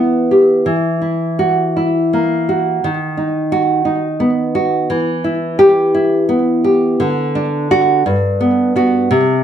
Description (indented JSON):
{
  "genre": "romantic piece for solo classical guitar",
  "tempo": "57 BPM (dotted quarters)",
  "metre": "6/8",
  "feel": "rubato",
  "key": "E minor",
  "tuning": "A4 = 440 Hz",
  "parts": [
    { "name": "nylon-string guitar", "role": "solo", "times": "0.0-9.4 s", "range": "G2 to G4", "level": "-12 LUFS", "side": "equal", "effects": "slapback echo" }
  ],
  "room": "moderate booth ambience, RT60 0.2 s",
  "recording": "none",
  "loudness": "-12 LUFS",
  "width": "side -9 dB against mid",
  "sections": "0.0-9.4 A section",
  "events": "none",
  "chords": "0.0 Em; 0.7 F#7/E; 2.8 B/D#; 4.9 Em; 7.0 D; 8.1 Gmaj7"
}